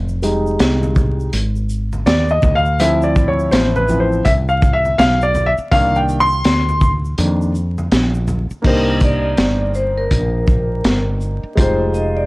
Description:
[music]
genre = hip hop, jazz-hop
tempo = 82 BPM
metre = 4/4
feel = swing 61% on 16ths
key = C minor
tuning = A4 = 441 Hz
[part]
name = woody fretless electric bass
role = bass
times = 0.0-12.3 s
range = F1 to F2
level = -19 LUFS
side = equal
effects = transformer saturation
[part]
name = tube shaker and congas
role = percussion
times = 0.1-8.6 s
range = none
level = -29 LUFS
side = equal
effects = none
[part]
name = warm baby grand piano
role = accompaniment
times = 0.2-12.3 s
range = Eb3 to C6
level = -17 LUFS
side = equal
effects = none
[part]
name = crunchy breakbeat drum kit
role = drums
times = 0.2-12.1 s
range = crash cymbal, hi-hat, kick drum, shaker, snare drum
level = -17 LUFS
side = equal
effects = none
[part]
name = vibraphone with medium mallets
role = melody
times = 8.7-12.3 s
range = Bb4 to Eb5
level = -22 LUFS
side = equal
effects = analog delay
[sound]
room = small room ambience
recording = dry, gritty hardware recording, vinyl crackle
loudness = -13 LUFS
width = side -21 dB against mid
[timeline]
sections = 0.0-8.6 A section; 8.6-12.3 B section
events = grand piano solo 0.0-8.6; break 7.2-8.6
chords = 0.0 Fm9; 2.4 Dm9; 5.7 Cm9; 11.6 Fm9

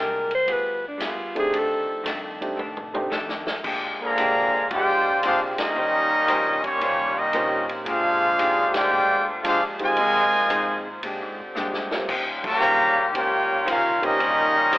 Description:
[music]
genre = jazz, big band swing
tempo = 114 BPM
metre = 4/4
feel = swing 67% on 8ths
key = Bb major from 3.6 s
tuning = A4 = 437 Hz
[part]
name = breathy alto saxophone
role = melody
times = 0.0-2.1 s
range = D4 to C5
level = -24 LUFS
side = equal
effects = none
[part]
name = archtop guitar, miked and amplified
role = accompaniment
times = 0.0-14.8 s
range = F2 to C5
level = -30 LUFS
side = left 1 dB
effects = none
[part]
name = upright bass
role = bass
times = 0.0-14.8 s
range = G1 to Bb2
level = -44 LUFS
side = equal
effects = none
[part]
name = swinging big-band drum kit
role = drums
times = 0.3-14.8 s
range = crash cymbal, hi-hat, kick drum, ride cymbal, snare drum, toms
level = -31 LUFS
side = equal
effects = none
[part]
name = warm grand piano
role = accompaniment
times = 1.4-14.2 s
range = Ab3 to G4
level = -29 LUFS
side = right 1 dB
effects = none
[part]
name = mellow saxophone section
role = sustained chords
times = 3.6-14.8 s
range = D3 to G4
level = -33 LUFS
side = equal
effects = none
[part]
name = clear trumpet section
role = melody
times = 4.0-14.8 s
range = Bb3 to Bb5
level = -20 LUFS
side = equal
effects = none
[part]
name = clear trombone section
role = second line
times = 4.0-14.8 s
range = C3 to G4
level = -28 LUFS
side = equal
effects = none
[sound]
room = moderate echo chamber reverb, RT60 1.5 s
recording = telephone sound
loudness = -20 LUFS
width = side -17 dB against mid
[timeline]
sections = 0.0-3.6 A section; 3.6-14.8 B section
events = alto saxophone solo 0.0-3.6; drum fill 2.6-3.6, 11.6-12.1; band accent 5.5, 8.7, 12.3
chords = 0.5 G7b9; 1.5 F13; 3.6 Bb13; 5.8 Eb13; 7.9 Bb13; 10.0 Fm7; 11.0 Bb13; 12.1 Eb13

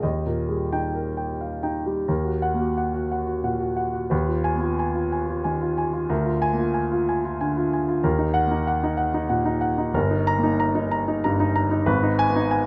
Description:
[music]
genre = classical, romantic character piece for solo piano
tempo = 85-96 BPM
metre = 3/4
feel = rubato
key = Eb minor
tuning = A4 = 440 Hz
[part]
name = warm concert grand piano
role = solo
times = 0.0-12.7 s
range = G1 to Bb5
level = -24 LUFS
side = equal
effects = none
[sound]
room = light reverb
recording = none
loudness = -24 LUFS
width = mono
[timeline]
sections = 0.0-2.1 A section; 2.1-12.7 B section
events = none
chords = 0.0 Eb; 2.1 Ebm; 4.1 Fm7b5/Eb; 6.1 Bb7/D; 8.0 Ebm; 9.9 Eb/G; 11.9 Abm

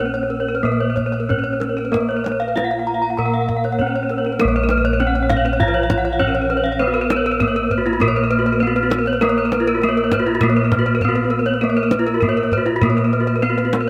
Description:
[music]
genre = Balinese gamelan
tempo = 100 BPM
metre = 4/4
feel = straight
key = Bb pelog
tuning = A4 = 440 Hz
[part]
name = gamelan-type bronze metallophone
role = melody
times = 0.0-13.9 s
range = Bb3 to Bb4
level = -24 LUFS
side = equal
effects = none
[part]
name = gamelan-type bronze metallophone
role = accompaniment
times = 0.0-13.9 s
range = F3-30c to Cb4+20c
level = -30 LUFS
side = equal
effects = none
[part]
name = gamelan-type bronze metallophone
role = arpeggios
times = 0.0-13.9 s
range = F4-30c to Bb5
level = -25 LUFS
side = equal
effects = none
[part]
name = gamelan-type bossed gongs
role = bass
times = 0.0-13.9 s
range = Bb1 to Cb5+20c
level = -25 LUFS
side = equal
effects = none
[part]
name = gamelan-type bronze metallophone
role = arpeggios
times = 0.1-13.8 s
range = Gb4-20c to Bb5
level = -25 LUFS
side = equal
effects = none
[part]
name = kendang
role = percussion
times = 0.2-13.9 s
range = none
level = -27 LUFS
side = equal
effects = none
[sound]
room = moderate plate reverb, RT60 3.4 s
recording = none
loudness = -18 LUFS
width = mono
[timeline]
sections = 0.0-4.4 A section; 4.4-13.9 B section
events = none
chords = none

